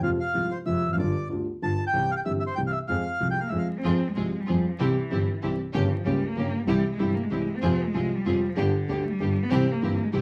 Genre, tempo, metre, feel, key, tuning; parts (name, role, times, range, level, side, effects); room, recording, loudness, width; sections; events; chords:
tango; 191 BPM; 3/4; rubato; F harmonic minor; A4 = 440 Hz
bandoneon; melody; 0.0-3.7 s; C5 to A5; -31 LUFS; equal
dark concert grand piano; accompaniment; 0.0-10.2 s; G1 to Ab4; -28 LUFS; equal
clear double bass; bass; 0.0-10.2 s; F1 to F2; -37 LUFS; equal
warm cello; second line; 3.4-10.2 s; D3 to C4; -32 LUFS; equal
rich studio string section; stabs; 3.8-10.2 s; Bb3 to Ab4; -38 LUFS; equal
wet studio reverb, RT60 0.6 s; vinyl crackle; -26 LUFS; mono
0.0-3.8 A section; 3.8-10.2 B section
cello solo 3.8-10.2
0.0 Fm; 1.0 G7; 1.9 C; 2.9 Fm; 4.8 C; 5.7 Gdim; 6.7 C; 7.6 Fm; 8.6 G; 9.5 C